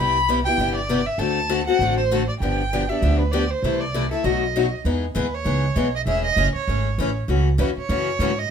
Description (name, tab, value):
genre	acoustic string swing (jazz manouche)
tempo	197 BPM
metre	4/4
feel	swing 58% on 8ths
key	C major, E major from 4.8 s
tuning	A4 = 440 Hz
part	warm violin	melody	0.0-8.5 s	B4 to B5	-24 LUFS	right 2 dB	none
part	picked steel-string acoustic guitar	accompaniment	0.0-8.3 s	B2 to A4	-23 LUFS	left 5 dB	none
part	upright bass	bass	0.0-8.5 s	E1 to G#2	-24 LUFS	right 1 dB	none
room	light reverb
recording	minimal, uncompressed stereo recording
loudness	-19 LUFS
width	side -7 dB against mid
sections	0.0-4.8 A section; 4.8-8.5 B section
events	none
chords	0.0 Cmaj7; 1.2 D7; 2.4 G7; 3.6 C6; 4.2 B7; 4.8 Emaj7; 6.1 Amaj7/E; 7.3 F#m7